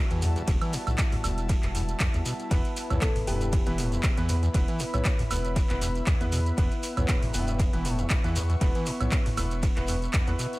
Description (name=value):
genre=acid house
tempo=118 BPM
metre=4/4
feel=swing 55% on 16ths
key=E dorian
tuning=A4 = 441 Hz
part: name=warm analog pad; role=sustained chords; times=0.0-10.6 s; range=G3 to B4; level=-38 LUFS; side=left 1 dB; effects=chorus, sidechain pumping
part: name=overdriven acid bass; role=riff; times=0.0-10.5 s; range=E1 to E3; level=-32 LUFS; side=equal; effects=distortion, sidechain pumping, dub echo
part: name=airy breathy pad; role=texture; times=0.0-10.6 s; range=B3 to C#6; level=-37 LUFS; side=equal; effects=chorus, sidechain pumping
part: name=saturated sub bass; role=bass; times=0.1-10.4 s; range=E1 to E2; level=-29 LUFS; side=equal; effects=tube saturation, sidechain pumping
part: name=booming analog drum machine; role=drums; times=0.1-10.6 s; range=handclaps, hi-hat, ride cymbal, toms, woodblock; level=-33 LUFS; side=right 1 dB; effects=dub echo
part: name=shekere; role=percussion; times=0.1-10.6 s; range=none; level=-40 LUFS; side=right 1 dB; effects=dub echo
part: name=electronic kick drum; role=drums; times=0.5-10.2 s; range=none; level=-26 LUFS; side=equal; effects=overdrive
part: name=clear grand piano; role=stabs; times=2.5-10.5 s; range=B3 to C#5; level=-36 LUFS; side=right 2 dB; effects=dub echo
part: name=thumb-piano-like synth pluck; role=melody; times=3.0-3.7 s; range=G4 to A4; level=-36 LUFS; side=left 2 dB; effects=chorus, analog delay
room=light reverb, digital ambience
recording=echo-heavy mix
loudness=-24 LUFS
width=side -20 dB against mid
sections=0.0-10.6 A section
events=none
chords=0.0 E5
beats=| 0.48 0.98 1.49 2.00 | 2.51 3.02 3.53 4.04 | 4.54 5.05 5.56 6.07 | 6.58 7.09 7.59 8.10 | 8.61 9.12 9.63 10.14